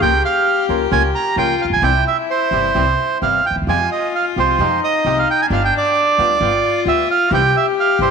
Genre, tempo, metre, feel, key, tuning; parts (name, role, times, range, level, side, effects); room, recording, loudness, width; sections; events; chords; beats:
tango; 132 BPM; 4/4; rubato; F minor; A4 = 440 Hz
bandoneon; melody; 0.0-8.1 s; C5 to Bb5; -16 LUFS; right 6 dB; tape echo
warm cello; second line; 0.0-8.1 s; D4 to G4; -21 LUFS; left 12 dB
nylon-string guitar; accompaniment; 0.0-8.1 s; C3 to Bb4; -26 LUFS; left 13 dB
bandoneon; stabs; 0.0-8.1 s; Ab3 to Bb4; -27 LUFS; right 8 dB; tape echo
upright bass; bass; 0.0-8.1 s; G1 to F2; -22 LUFS; right 1 dB
moderate echo chamber reverb, RT60 2.2 s; 1960s-style stereo with parts hard left and right; -14 LUFS; side -6 dB against mid
0.0-8.1 A section
0.0 Bbm/Db; 1.8 C; 3.7 Fmadd9; 5.5 G7; 7.3 C
| 0.02 0.47 0.92 1.37 | 1.83 2.29 2.75 3.21 | 3.67 4.14 4.59 5.05 | 5.51 5.96 6.41 6.86 | 7.32 7.77